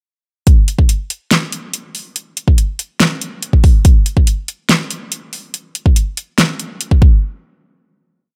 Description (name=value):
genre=future bass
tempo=142 BPM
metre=4/4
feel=half-time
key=none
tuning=none
part: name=electronic kick drum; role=drums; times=0.5-7.1 s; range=none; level=-12 LUFS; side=equal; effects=none
part: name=pop drum kit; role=drums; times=0.5-6.9 s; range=hi-hat, snare drum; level=-18 LUFS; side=equal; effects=none
room=little or no reverb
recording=none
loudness=-14 LUFS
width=mono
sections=0.5-7.2 drop; 7.2-8.4 final hit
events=drop 0.5-7.2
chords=none